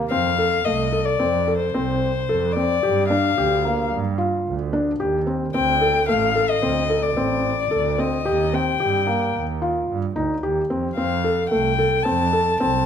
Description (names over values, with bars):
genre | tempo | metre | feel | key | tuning
contemporary instrumental, chamber music in an uneven meter | 110 BPM | 5/4 | straight | unclear | A4 = 440 Hz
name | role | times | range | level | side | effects
dark violin | melody | 0.1-12.9 s | C5 to A5 | -22 LUFS | left 7 dB | none
felt-muted upright piano | arpeggios | 0.1-12.9 s | A3 to A4 | -22 LUFS | left 1 dB | none
warm double bass | bass | 0.1-12.9 s | A1 to G2 | -26 LUFS | right 6 dB | none
room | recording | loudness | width
moderate recital hall reverb, RT60 1.7 s | none | -18 LUFS | side -8 dB against mid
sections
0.1-12.9 A section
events
none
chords
0.1 F; 2.8 Gm7; 5.5 D5; 8.3 Cm7/Eb; 11.0 F